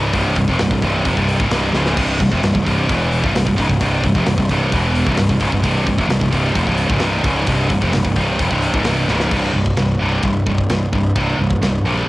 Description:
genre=heavy metal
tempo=131 BPM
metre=4/4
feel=straight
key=unclear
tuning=A4 = 441 Hz
part: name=scooped high-gain guitar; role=riff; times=0.0-12.1 s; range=C2 to E3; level=-24 LUFS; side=left 6 dB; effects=distortion, cassette tape
part: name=scooped high-gain guitar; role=riff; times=0.0-12.1 s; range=C2 to E3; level=-18 LUFS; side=right 1 dB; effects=distortion, cassette tape
part: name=fuzz picked electric bass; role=bass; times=0.0-12.0 s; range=C1 to Bb1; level=-20 LUFS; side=equal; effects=overdrive
part: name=tight metal drum kit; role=drums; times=0.1-11.7 s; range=crash cymbal, hi-hat, kick drum, ride cymbal, snare drum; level=-23 LUFS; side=equal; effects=cassette tape
room=studio reverb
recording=home recording on cassette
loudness=-14 LUFS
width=side -18 dB against mid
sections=0.0-9.3 A section; 9.3-12.1 B section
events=drum fill 1.7, 9.1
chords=0.0 C; 9.3 C5

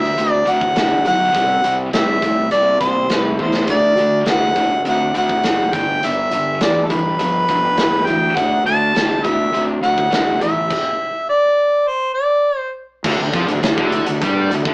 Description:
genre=classic rock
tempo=102 BPM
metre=4/4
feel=straight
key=D mixolydian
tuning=A4 = 439 Hz
part: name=warm harmonica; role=melody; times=0.0-12.7 s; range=A4 to A5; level=-16 LUFS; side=equal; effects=none
part: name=tight distorted guitar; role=riff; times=0.0-14.7 s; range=G2 to C4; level=-24 LUFS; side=equal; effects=distortion
part: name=fuzz fingered electric bass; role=bass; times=0.0-14.7 s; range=F#1 to G2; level=-21 LUFS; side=equal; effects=overdrive
part: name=big rock drum kit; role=drums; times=0.0-14.7 s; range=crash cymbal, hi-hat, kick drum, snare drum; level=-21 LUFS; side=equal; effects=none
part: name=tonewheel organ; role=sustained chords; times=13.1-14.7 s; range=D4 to F#5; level=-27 LUFS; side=equal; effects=none
room=moderate studio reverb, RT60 0.7 s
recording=rough rehearsal-room recording, AM radio sound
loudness=-14 LUFS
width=side -37 dB against mid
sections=0.0-13.1 A section; 13.1-14.7 B section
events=drum fill 3.4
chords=0.0 D; 1.4 C; 3.7 D; 5.7 G; 8.4 D; 10.7 N.C.; 13.1 D

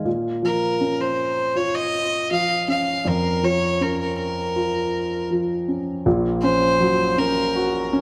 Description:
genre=pop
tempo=80 BPM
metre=4/4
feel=straight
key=Bb minor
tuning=A4 = 439 Hz
part: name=warm concert grand piano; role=accompaniment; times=0.0-8.0 s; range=Bb1 to Gb4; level=-24 LUFS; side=equal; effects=none
part: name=warm violin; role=melody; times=0.5-7.9 s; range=Bb4 to F5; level=-24 LUFS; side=equal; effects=none
room=moderate lush hall reverb, RT60 2.6 s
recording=none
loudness=-22 LUFS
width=mono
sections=0.0-6.1 A section; 6.1-8.0 B section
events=none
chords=0.1 Bbm; 6.1 Gb/Bb

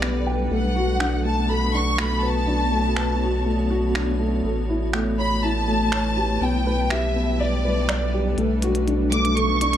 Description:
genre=piano and strings electronica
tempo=122 BPM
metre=4/4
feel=straight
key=B minor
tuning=A4 = 440 Hz
part: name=rich studio violin section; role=melody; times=0.0-9.8 s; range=D5 to D6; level=-26 LUFS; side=equal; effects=low-pass filter, digital delay
part: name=granular cloud pad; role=sustained chords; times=0.0-9.8 s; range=G3 to D5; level=-28 LUFS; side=left 1 dB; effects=built-in reverb
part: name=dark upright piano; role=riff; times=0.0-9.8 s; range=A3 to G5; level=-24 LUFS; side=left 1 dB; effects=digital delay
part: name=warm sub bass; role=bass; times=0.0-9.8 s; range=A1 to B1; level=-24 LUFS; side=equal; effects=none
part: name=minimal click drum kit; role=drums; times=0.0-9.8 s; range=finger snaps, hi-hat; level=-29 LUFS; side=right 2 dB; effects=none
part: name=riser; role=sound effects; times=9.3-9.8 s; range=none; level=-50 LUFS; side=right 2 dB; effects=none
room=light reverb, digital ambience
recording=dark, warm production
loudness=-20 LUFS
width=side -10 dB against mid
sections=0.0-8.4 A section; 8.4-9.8 B section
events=build-up 8.4-9.8; filter sweep on ambient pad 8.4-9.8; filter sweep on violin section 8.4-9.8; filter sweep 8.4-9.8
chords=0.0 G/B; 0.5 Bm7; 4.4 A7; 6.4 G/B; 8.4 Bm7

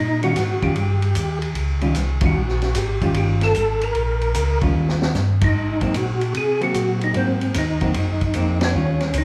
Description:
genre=soul jazz organ trio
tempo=150 BPM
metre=4/4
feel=swing 67% on 8ths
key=Eb mixolydian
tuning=A4 = 442 Hz
part: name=percussive tonewheel organ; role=melody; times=0.0-9.2 s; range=C4 to Bb4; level=-25 LUFS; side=equal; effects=slow rotary speaker, chorus vibrato
part: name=mellow tonewheel organ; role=bass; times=0.0-9.2 s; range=G1 to C3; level=-24 LUFS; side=equal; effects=chorus vibrato, slow rotary speaker
part: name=vintage hollow-body jazz guitar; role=accompaniment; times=0.2-9.0 s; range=Eb3 to F4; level=-26 LUFS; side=equal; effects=none
part: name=vintage drum kit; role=drums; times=0.2-9.2 s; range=hi-hat, kick drum, ride cymbal, snare drum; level=-29 LUFS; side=equal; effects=none
room=wet large studio reverb, RT60 1.1 s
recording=heard from further back in the room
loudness=-20 LUFS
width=mono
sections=0.0-9.2 A section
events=band accent 2.2, 5.4, 8.6; drum fill 4.8-5.2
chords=0.0 Eb9; 5.6 Ab9

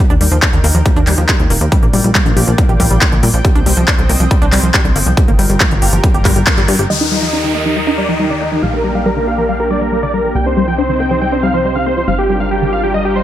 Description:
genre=uplifting trance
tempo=139 BPM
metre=4/4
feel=straight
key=unclear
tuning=A4 = 439 Hz
part: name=lush unison pad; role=sustained chords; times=0.0-13.2 s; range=C3 to G5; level=-21 LUFS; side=equal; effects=chorus, sidechain pumping
part: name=tight sequenced synth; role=arpeggios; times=0.1-13.2 s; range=D3 to G4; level=-19 LUFS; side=left 1 dB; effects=chorus, phaser, sidechain pumping, tape echo
part: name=plucky analog bass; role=bass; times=0.1-13.2 s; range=Eb1 to Bb2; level=-17 LUFS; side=equal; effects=sidechain pumping
part: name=big-room dance drum kit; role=drums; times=0.1-6.9 s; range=handclaps, hi-hat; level=-17 LUFS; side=equal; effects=sidechain pumping on hats, low-pass filter on hats, low-pass filter on snare, low-pass filter on room
part: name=electronic kick drum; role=drums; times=0.4-6.6 s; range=none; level=-13 LUFS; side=equal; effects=none
part: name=big supersaw lead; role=melody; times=6.9-13.2 s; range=Eb4 to G5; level=-16 LUFS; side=equal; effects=sidechain pumping, low-pass filter, tape echo
part: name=downlifter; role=sound effects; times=6.9-10.4 s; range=none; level=-21 LUFS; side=left 1 dB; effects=none
room=light reverb, digital ambience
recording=none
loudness=-11 LUFS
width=side -12 dB against mid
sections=0.0-6.9 A section; 6.9-13.2 B section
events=band accent 6.5; filter sweep on supersaw synth 6.9-13.2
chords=0.0 Eb; 1.7 Bb6; 3.4 Cm; 5.2 Gm7; 6.9 Eb; 8.6 Bb6; 10.4 Cm; 12.1 Gm7

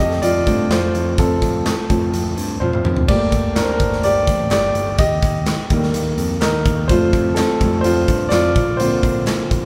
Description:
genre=piano-driven pop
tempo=126 BPM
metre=4/4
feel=straight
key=unclear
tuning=A4 = 440 Hz
part: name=warm concert grand piano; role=accompaniment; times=0.0-9.7 s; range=D3 to F5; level=-20 LUFS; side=equal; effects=none
part: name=modern bright picked electric bass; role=bass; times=0.0-9.7 s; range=G1 to G2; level=-25 LUFS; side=equal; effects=none
part: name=huge arena drum kit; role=drums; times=0.1-9.6 s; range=crash cymbal, handclaps, hi-hat, kick drum, snare drum, toms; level=-23 LUFS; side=equal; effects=none
part: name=group handclap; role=percussion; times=3.6-9.4 s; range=none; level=barely audible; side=none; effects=none
room=moderate large studio reverb, RT60 1.0 s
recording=band playing live in one room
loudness=-17 LUFS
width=mono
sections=0.0-3.1 A section; 3.1-9.7 B section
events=grand piano solo 0.0-3.1, 3.1-9.7; drum fill 2.6-3.1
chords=0.0 F; 3.1 Gmadd9; 5.0 Eb; 6.9 Fadd9; 8.6 Bbadd9

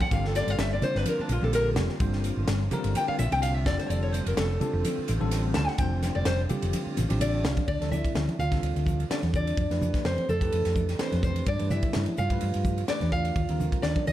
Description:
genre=electric jazz fusion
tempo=127 BPM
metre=4/4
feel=swing 54% on 16ths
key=D dorian from 7.7 s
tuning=A4 = 441 Hz
part: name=nylon-string guitar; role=melody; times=0.0-14.1 s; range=D4 to A5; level=-31 LUFS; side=equal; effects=none
part: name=bell-like tine electric piano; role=accompaniment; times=0.0-14.1 s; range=D3 to F5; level=-34 LUFS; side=left 2 dB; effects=medium stereo tremolo, analog chorus
part: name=muted studio string section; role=sustained chords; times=0.0-7.6 s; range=D3 to F4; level=-40 LUFS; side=right 1 dB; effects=none
part: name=crisp fusion drum kit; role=drums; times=0.0-14.1 s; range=hi-hat, kick drum, ride cymbal, snare drum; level=-31 LUFS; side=equal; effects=none
part: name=congas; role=percussion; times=0.0-14.1 s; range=none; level=-33 LUFS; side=right 2 dB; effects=none
part: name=hollow-body short-scale fingered electric bass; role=bass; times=0.1-14.1 s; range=F1 to G2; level=-28 LUFS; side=equal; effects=none
part: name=dark trombone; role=second line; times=7.2-14.1 s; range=A3 to F4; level=-36 LUFS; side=right 4 dB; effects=tape echo
room=light reverb, small room ambience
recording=dark, warm production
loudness=-24 LUFS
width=side -13 dB against mid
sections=0.0-7.7 A section; 7.7-14.1 B section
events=nylon-string guitar solo 0.0-7.7; tine electric piano fill 7.0-7.7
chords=0.1 Gm7; 3.7 F69; 7.7 Dm9; 9.6 Fmaj7; 11.5 G7; 13.4 Ebmaj9

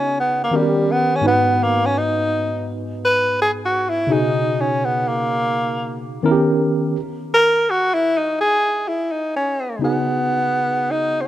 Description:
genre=hip hop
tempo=84 BPM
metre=4/4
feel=swing 66% on 16ths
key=unclear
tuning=A4 = 441 Hz
part: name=breathy tenor saxophone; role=melody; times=0.0-11.3 s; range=G3 to B4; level=-18 LUFS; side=equal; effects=none
part: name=tine electric piano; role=accompaniment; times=0.0-11.3 s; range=G#2 to B4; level=-20 LUFS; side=equal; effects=medium stereo tremolo
room=moderate plate reverb, RT60 3.2 s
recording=rough home demo mix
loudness=-16 LUFS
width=side -13 dB against mid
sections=0.0-9.8 A section; 9.8-11.3 B section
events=tenor saxophone solo 0.0-9.8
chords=0.0 C#9sus4; 0.5 D#7b13; 1.2 G#m7; 4.1 C#9sus4; 6.2 D#7b13; 7.0 N.C.; 9.8 C#9sus4

